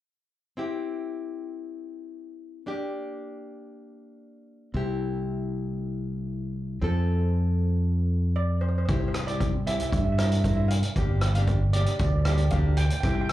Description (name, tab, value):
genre	calypso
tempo	116 BPM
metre	4/4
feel	straight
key	unclear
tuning	A4 = 440 Hz
part	nylon-string guitar	accompaniment	0.6-13.3 s	Bb3 to Bb4	-34 LUFS	left 3 dB	slapback echo
part	modern bright fingered electric bass	bass	4.7-13.3 s	G1 to G2	-25 LUFS	equal	none
part	steel pan	melody	8.4-13.3 s	C5 to G5	-33 LUFS	right 3 dB	slapback echo, tape echo
part	street-band drum kit	drums	8.9-13.3 s	hi-hat, kick drum, rim click	-27 LUFS	equal	none
room	little or no reverb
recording	live gig heard through the venue's PA, club ambience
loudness	-24 LUFS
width	side -14 dB against mid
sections	0.6-8.9 A section; 8.9-13.3 B section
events	none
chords	0.6 C; 2.7 Gm; 4.7 C; 6.8 F; 8.9 C7; 11.0 Gm